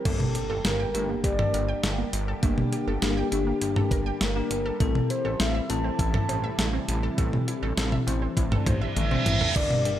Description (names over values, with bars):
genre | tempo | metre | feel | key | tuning
synth-pop | 101 BPM | 4/4 | straight | G dorian | A4 = 444 Hz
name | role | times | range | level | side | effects
mellow horn-like synth lead | melody | 0.0-10.0 s | A4 to A5 | -32 LUFS | equal | chorus, shimmer reverb, tape echo
bell-like tine electric piano | accompaniment | 0.1-10.0 s | Bb3 to C5 | -32 LUFS | left 4 dB | phaser, shimmer reverb
soft string machine | sustained chords | 0.1-10.0 s | C3 to G4 | -35 LUFS | left 1 dB | phaser, ensemble chorus, shimmer reverb
analog pluck | arpeggios | 0.1-10.0 s | A3 to G5 | -35 LUFS | right 2 dB | chorus, shimmer reverb, tape echo
chorused synth bass | bass | 0.1-10.0 s | G1 to A1 | -29 LUFS | equal | none
clean 12-bit digital drum machine | drums | 0.1-10.0 s | crash cymbal, hi-hat, kick drum, snare drum, toms | -27 LUFS | equal | none
impact and reverse cymbal | sound effects | 0.2-2.4, 8.7-9.6 s | none | -33 LUFS | right 2 dB | none
room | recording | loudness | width
light reverb | none | -23 LUFS | side -11 dB against mid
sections
0.1-9.6 A section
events
impact 0.1-2.4; reverse cymbal 8.7-9.6; drum fill 9.0-9.6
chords
0.1 Gmadd9; 4.8 Am